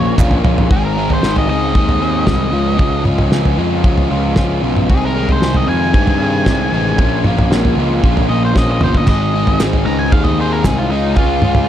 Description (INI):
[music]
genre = indie rock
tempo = 115 BPM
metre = 4/4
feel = straight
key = Ab major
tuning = A4 = 440 Hz
[part]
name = octave-fuzz lead guitar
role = melody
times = 0.0-11.7 s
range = Eb4 to Bb5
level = -22 LUFS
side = equal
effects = distortion, tape echo
[part]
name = sweeping resonant pad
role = sustained chords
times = 0.0-0.7 s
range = Ab4 to Bb5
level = -33 LUFS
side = equal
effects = none
[part]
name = crunchy overdriven guitar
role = riff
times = 0.0-11.7 s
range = Ab2 to Ab4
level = -17 LUFS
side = left 1 dB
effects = none
[part]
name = fuzz picked electric bass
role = bass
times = 0.0-11.7 s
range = G1 to G2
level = -18 LUFS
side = equal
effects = overdrive
[part]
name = cloth-damped thuddy drum kit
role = drums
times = 0.2-11.7 s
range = kick drum, snare drum, splash cymbal, toms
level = -15 LUFS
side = equal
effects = none
[part]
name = group handclap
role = percussion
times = 0.2-0.3, 9.6-10.8 s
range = none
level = -32 LUFS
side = right 6 dB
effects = none
[sound]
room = little or no reverb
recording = dark, warm production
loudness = -12 LUFS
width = side -11 dB against mid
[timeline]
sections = 0.7-11.7 A section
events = drum fill 0.0-0.7, 8.6-9.1; lead electric guitar solo 0.7-11.7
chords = 0.0 Bbm7; 0.7 Ab; 2.5 Db; 4.9 Ab6/C; 7.0 Bbm; 9.1 Ab; 10.9 Db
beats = 0.18 | 0.70 1.22 1.75 2.27 | 2.80 3.32 3.84 4.37 | 4.89 5.42 5.94 6.46 | 6.98 7.51 8.03 8.55 | 9.07 9.60 10.12 10.64 | 11.16 11.69